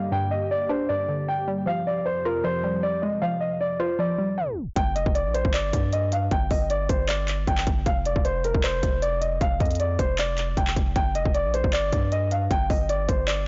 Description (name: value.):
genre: hip hop, trap.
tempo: 155 BPM.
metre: 4/4.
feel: half-time.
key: G phrygian.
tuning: A4 = 438 Hz.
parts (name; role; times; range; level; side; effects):
dark concert grand piano; melody; 0.0-13.5 s; Bb4 to G5; -28 LUFS; equal; low-pass filter, delay.
hollow square pluck; accompaniment; 0.0-4.8 s; G2 to F4; -31 LUFS; equal; chorus, low-pass filter.
hollow soft pad; sustained chords; 0.0-4.7 s; F2 to G4; -37 LUFS; equal; chorus.
long sustained 808-style bass; bass; 4.8-13.5 s; F1 to G2; -30 LUFS; equal; none.
trap drum kit; drums; 4.8-13.4 s; handclaps, hi-hat, kick drum; -28 LUFS; equal; none.
room: light reverb.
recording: blown-out, overdriven recording, overdrive, tape stop, nothing above 7.6 kHz.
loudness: -24 LUFS.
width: mono.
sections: 0.0-4.8 A section; 4.8-13.5 B section.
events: tape stop 4.4-4.8.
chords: 0.0 Gm; 1.7 Fmadd9; 4.8 G5; 7.9 F5; 11.0 G5.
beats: | 0.12 0.51 0.89 1.28 | 1.67 2.06 2.44 2.83 | 3.22 3.60 3.99 4.38 | 4.76 5.15 5.54 5.93 | 6.31 6.70 7.09 7.47 | 7.86 8.25 8.64 9.02 | 9.41 9.80 10.18 10.57 | 10.96 11.35 11.73 12.12 | 12.51 12.89 13.28.